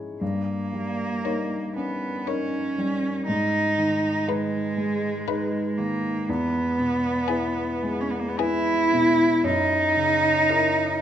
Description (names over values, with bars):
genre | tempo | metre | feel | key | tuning
classical, slow romantic movement for piano trio | 59 BPM | 3/4 | rubato | G# minor | A4 = 440 Hz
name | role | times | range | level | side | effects
warm baby grand piano | accompaniment | 0.0-11.0 s | E2 to C#5 | -26 LUFS | left 1 dB | none
rich cello | second line | 0.2-11.0 s | G#3 to E4 | -23 LUFS | right 2 dB | none
clear violin | melody | 1.2-11.0 s | G#4 to C#5 | -33 LUFS | left 14 dB | none
room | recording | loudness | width
moderate recital hall reverb, RT60 1.8 s | close, detailed microphones | -21 LUFS | side -10 dB against mid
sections
0.0-11.0 A section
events
none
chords
0.2 D#7/G; 3.3 G#m; 6.3 E; 9.4 F#7